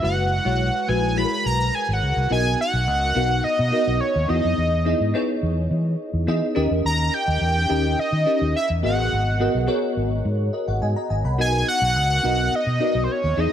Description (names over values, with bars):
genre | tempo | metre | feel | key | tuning
polished 1980s jazz-funk pop | 106 BPM | 4/4 | straight | B major | A4 = 440 Hz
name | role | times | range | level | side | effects
fat analog lead | melody | 0.0-13.5 s | C5 to B5 | -22 LUFS | right 1 dB | none
bell-like FM electric piano | accompaniment | 0.0-13.5 s | G#3 to B5 | -24 LUFS | left 1 dB | ensemble chorus
fingered electric bass | bass | 0.0-13.5 s | F#1 to E3 | -23 LUFS | equal | none
room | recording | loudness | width
light reverb | lossy compression artefacts | -19 LUFS | side -9 dB against mid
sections
0.0-2.3 A section; 2.3-13.5 B section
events
analog synth lead solo 0.0-2.3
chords
0.0 F#9sus4; 2.3 Bmaj7; 4.3 Emaj7; 6.6 D#7; 8.8 G#m9; 11.4 Bmaj7